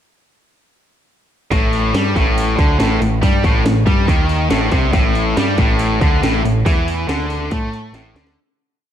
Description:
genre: hard rock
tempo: 140 BPM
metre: 4/4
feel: straight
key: unclear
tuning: A4 = 440 Hz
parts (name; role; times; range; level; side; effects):
- distorted electric guitar; riff; 1.5-8.4 s; A2 to A3; -20 LUFS; left 7 dB; overdrive
- tight distorted guitar; riff; 1.5-8.4 s; A2 to A3; -21 LUFS; right 8 dB; distortion, slapback echo
- growling picked electric bass; bass; 1.5-8.4 s; A1 to A2; -20 LUFS; equal; overdrive
- house drum kit; drums; 1.5-8.4 s; hi-hat, kick drum, snare drum; -17 LUFS; equal; overdrive
room: moderate recital hall reverb, RT60 1.7 s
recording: big arena sound, cassette tape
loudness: -13 LUFS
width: side -10 dB against mid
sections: 1.5-8.4 riff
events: fade-out 6.7-8.4; drum fill 7.9-8.4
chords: 1.5 A5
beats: | 1.51 1.94 2.37 2.80 | 3.23 3.66 4.08 4.51 | 4.94 5.37 5.80 6.23 | 6.66 7.09 7.52 7.95

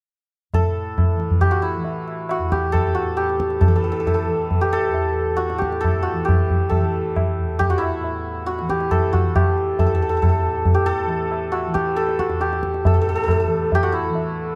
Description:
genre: indian classical, Hindustani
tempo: 136 BPM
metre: 7/4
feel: straight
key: unclear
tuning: A4 = 440 Hz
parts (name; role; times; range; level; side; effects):
- santur; melody; 0.5-14.6 s; E4 to A4; -24 LUFS; equal; none
- tanpura; drone; 0.5-14.6 s; E2 to E3; -30 LUFS; equal; none
- tabla; percussion; 0.5-14.3 s; none; -23 LUFS; equal; none
room: light reverb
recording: close, detailed microphones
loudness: -20 LUFS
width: mono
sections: 0.5-12.8 A section; 12.8-14.6 B section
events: none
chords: none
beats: | 0.53 0.97 1.42 1.86 2.30 2.74 3.18 | 3.62 4.06 4.50 4.94 5.38 5.82 6.26 | 6.70 7.14 7.58 8.02 8.46 8.90 9.34 | 9.78 10.22 10.65 11.09 11.53 11.97 12.41 | 12.84 13.28 13.72 14.15

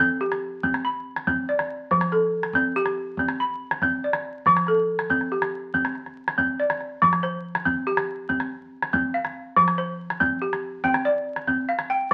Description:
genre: west african traditional, West African string and xylophone music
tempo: 94 BPM (dotted quarters)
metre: 12/8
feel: straight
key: F lydian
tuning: A4 = 439 Hz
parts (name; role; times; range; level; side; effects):
- balafon; arpeggios; 0.0-12.1 s; F3 to B5; -24 LUFS; equal; none
- calabash; percussion; 0.3-12.1 s; none; -31 LUFS; equal; none
room: wet studio reverb, RT60 0.8 s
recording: very old 78 rpm record, vinyl crackle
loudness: -24 LUFS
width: mono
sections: 0.0-7.0 A section; 7.0-12.1 B section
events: none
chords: 0.0 F (rootless); 0.6 C5; 1.9 F; 3.2 C5; 4.5 F; 5.7 C5; 7.0 F5; 8.3 C5; 9.6 F5; 10.8 C5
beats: 0.63 1.27 | 1.91 2.55 3.19 3.83 | 4.46 5.10 5.74 6.38 | 7.02 7.66 8.29 8.93 | 9.57 10.20 10.84 11.47 | 12.11

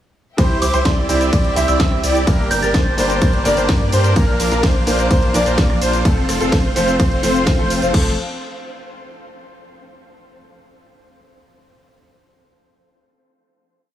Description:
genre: EDM, festival progressive house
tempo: 127 BPM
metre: 4/4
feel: straight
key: F major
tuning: A4 = 440 Hz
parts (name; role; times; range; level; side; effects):
- warm concert grand piano; accompaniment; 0.4-8.1 s; G2 to C5; -23 LUFS; equal; sidechain pumping, tape echo
- rich chamber string section; sustained chords; 0.4-8.2 s; F3 to E6; -29 LUFS; left 1 dB; sidechain pumping
- dark grand piano; arpeggios; 0.4-8.1 s; A4 to E5; -23 LUFS; left 1 dB; sidechain pumping, tape echo
- supersaw chords; riff; 0.4-8.1 s; C4 to E5; -22 LUFS; right 1 dB; lush chorus, sidechain pumping, tape echo
- saturated sub bass; bass; 0.4-8.2 s; F1 to G2; -22 LUFS; equal; sidechain pumping
- electronic kick drum; drums; 0.4-8.0 s; none; -16 LUFS; equal; overdrive
- house drum kit; drums; 0.4-8.0 s; cabasa, crash cymbal, hi-hat, ride cymbal, rim click, snare drum; -25 LUFS; equal; overdrive
- soft synth bell; melody; 0.6-3.3 s; C6 to A6; -26 LUFS; right 2 dB; chorus, tape echo
room: little or no reverb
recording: small room ambience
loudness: -14 LUFS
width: side -12 dB against mid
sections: 0.4-7.9 drop; 7.9-9.8 final chord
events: drop 0.4-7.9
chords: 0.4 C; 2.3 Gm; 4.2 Bb; 6.1 F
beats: | 0.38 0.85 1.33 1.80 | 2.27 2.74 3.22 3.69 | 4.16 4.63 5.11 5.58 | 6.05 6.52 7.00 7.47 | 7.94

